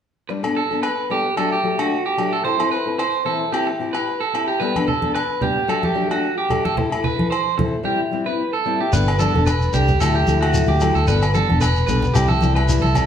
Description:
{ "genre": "highlife guitar band", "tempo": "111 BPM", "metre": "4/4", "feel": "swing 54% on 16ths", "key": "G major", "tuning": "A4 = 440 Hz", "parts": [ { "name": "fingerpicked steel-string acoustic guitar", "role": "accompaniment", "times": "0.3-13.1 s", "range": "E3 to A4", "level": "-23 LUFS", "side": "left 4 dB", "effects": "none" }, { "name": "electric guitar at the edge of break-up", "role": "arpeggios", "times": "0.3-13.1 s", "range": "F#4 to C5", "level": "-21 LUFS", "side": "right 3 dB", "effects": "none" }, { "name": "agogo bells", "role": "percussion", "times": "0.4-13.1 s", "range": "none", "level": "-28 LUFS", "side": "left 2 dB", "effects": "none" }, { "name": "congas", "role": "percussion", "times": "4.8-13.1 s", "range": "none", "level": "-25 LUFS", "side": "right 1 dB", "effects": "none" }, { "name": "fingered electric bass", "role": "bass", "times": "8.9-13.1 s", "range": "E1 to D2", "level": "-18 LUFS", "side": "equal", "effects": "none" }, { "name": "shekere", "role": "percussion", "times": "8.9-13.1 s", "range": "none", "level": "-25 LUFS", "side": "left 2 dB", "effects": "none" } ], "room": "wet stone room reverb, RT60 1.3 s", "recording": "band playing live in one room", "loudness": "-17 LUFS", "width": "side -8 dB against mid", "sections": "0.3-8.9 A section; 8.9-13.1 B section", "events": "none", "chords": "0.3 Gadd9; 1.4 D; 2.5 Am; 3.5 C; 4.6 Gadd9; 5.7 D; 6.8 Am; 7.9 C; 8.9 Gadd9; 10.0 Dadd9; 11.1 Gadd9; 12.1 C", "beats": "| 0.30 0.84 1.38 1.92 | 2.46 3.00 3.54 4.08 | 4.62 5.16 5.69 6.23 | 6.77 7.31 7.85 8.39 | 8.93 9.46 10.00 10.54 | 11.07 11.61 12.15 12.68" }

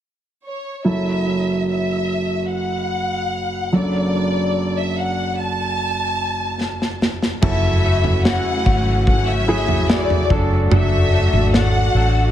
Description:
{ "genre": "pop ballad", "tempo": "73 BPM", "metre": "4/4", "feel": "straight", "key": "unclear", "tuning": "A4 = 438 Hz", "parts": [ { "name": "warm studio violin section", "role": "melody", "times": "0.5-12.3 s", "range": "C#5 to A5", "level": "-23 LUFS", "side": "left 2 dB", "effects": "dub echo" }, { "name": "clear concert grand piano", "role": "accompaniment", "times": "0.8-12.3 s", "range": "F#1 to A4", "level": "-22 LUFS", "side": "right 1 dB", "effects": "dub echo" }, { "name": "modern studio drum kit", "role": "drums", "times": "6.6-11.7 s", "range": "crash cymbal, kick drum, snare drum, toms", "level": "-19 LUFS", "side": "equal", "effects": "none" }, { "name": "warm studio string section", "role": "sustained chords", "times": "7.4-12.3 s", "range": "C#3 to G#5", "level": "-28 LUFS", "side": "equal", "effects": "none" }, { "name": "direct-recorded clean electric guitar", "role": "arpeggios", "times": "7.4-12.3 s", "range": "F#2 to A4", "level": "-28 LUFS", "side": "left 7 dB", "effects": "ensemble chorus, dub echo" }, { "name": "vintage muted fingered electric bass", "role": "bass", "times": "7.4-12.3 s", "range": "F#1 to A1", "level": "-18 LUFS", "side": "equal", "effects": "none" } ], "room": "small room ambience", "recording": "echo-heavy mix", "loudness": "-16 LUFS", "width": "side -11 dB against mid", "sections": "0.8-7.4 A section; 7.4-12.3 B section", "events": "drum fill 6.6-7.4", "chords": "0.0 N.C.; 0.8 F#m7; 3.7 D/F#; 7.4 F#m7; 10.3 D/F#", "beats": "0.03 | 0.85 1.67 2.49 3.31 | 4.14 4.96 5.78 6.60 | 7.42 8.25 9.07 9.89 | 10.71 11.53" }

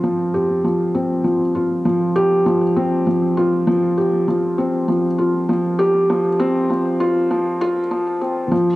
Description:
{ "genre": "piano and strings electronica", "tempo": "99 BPM", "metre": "4/4", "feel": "straight", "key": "unclear", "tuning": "A4 = 440 Hz", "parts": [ { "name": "felt-muted upright piano", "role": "riff", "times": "0.0-8.7 s", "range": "F3 to G4", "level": "-16 LUFS", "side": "equal", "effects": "cassette tape, tape echo" }, { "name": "warm sub bass", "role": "bass", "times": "0.3-7.2 s", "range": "F1 to F2", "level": "-41 LUFS", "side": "equal", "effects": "none" } ], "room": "wet small room reverb, RT60 0.5 s", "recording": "home recording on cassette, high-pass filter", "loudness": "-16 LUFS", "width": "side -17 dB against mid", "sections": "0.0-8.5 A section", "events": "build-up 0.0-8.5; filter sweep 0.0-8.5; break 7.3-8.5", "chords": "0.0 Fsus2", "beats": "0.04 0.64 | 1.25 1.85 2.46 3.06 | 3.67 4.28 4.88 5.49 | 6.09 6.70 7.31 7.91 | 8.52" }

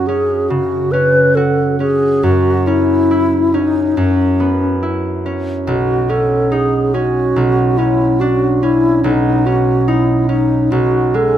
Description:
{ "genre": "classical, impressionist duo for alto flute and harp", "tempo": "71 BPM", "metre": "4/4", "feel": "rubato", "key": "unclear", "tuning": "A4 = 440 Hz", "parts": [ { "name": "wooden-headed alto flute", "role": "melody", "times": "0.0-11.4 s", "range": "C#4 to B4", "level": "-15 LUFS", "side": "left 2 dB", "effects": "none" }, { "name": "concert harp", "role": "accompaniment", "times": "0.0-11.4 s", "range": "B1 to F#4", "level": "-15 LUFS", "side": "right 2 dB", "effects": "none" } ], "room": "moderate recital hall reverb, RT60 1.6 s", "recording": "close, detailed microphones", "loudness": "-12 LUFS", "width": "side -10 dB against mid", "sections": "0.0-11.4 A section", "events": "none", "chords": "0.0 F#5; 2.2 C#m7/F#; 5.7 Badd9; 7.4 Bmadd9; 9.0 C#sus2/B", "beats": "0.49 1.36 | 2.23 3.10 3.96 4.83 | 5.67 6.52 7.36 8.20 | 9.04 9.88 10.71" }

